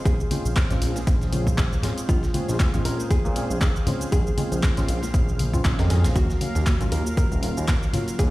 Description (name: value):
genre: deep house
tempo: 118 BPM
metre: 4/4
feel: swing 56% on 16ths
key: Bb minor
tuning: A4 = 438 Hz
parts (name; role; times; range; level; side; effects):
- warm analog pad; sustained chords; 0.0-8.3 s; Gb3 to F5; -36 LUFS; right 1 dB; chorus, tremolo, sidechain pumping
- deep mellow chord stab; stabs; 0.0-8.3 s; Gb3 to F5; -31 LUFS; equal; chorus, sidechain pumping
- hollow-body jazz guitar; melody; 0.1-8.3 s; F4 to Bb4; -34 LUFS; equal; digital delay
- smooth synth bass; bass; 0.1-8.3 s; Eb1 to Bb2; -25 LUFS; equal; tube saturation, sidechain pumping
- dusty soul sampler-style drum kit; drums; 0.1-8.3 s; hi-hat, snare drum; -40 LUFS; equal; none
- electronic kick drum; drums; 0.1-8.3 s; none; -22 LUFS; equal; overdrive
- punchy analog drum machine; drums; 0.1-8.3 s; cabasa, handclaps, hi-hat; -32 LUFS; equal; overdrive
- congas and bongos; percussion; 0.3-8.1 s; none; -29 LUFS; left 1 dB; none
room: digital ambience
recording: played on a big sound system in a bare room, large studio reverb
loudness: -20 LUFS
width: side -18 dB against mid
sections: 0.0-8.3 A section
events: none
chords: 0.0 Bbm7; 6.2 Ebm7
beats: | 0.06 0.56 1.07 1.58 | 2.09 2.60 3.11 3.61 | 4.12 4.63 5.14 5.65 | 6.16 6.67 7.17 7.68 | 8.19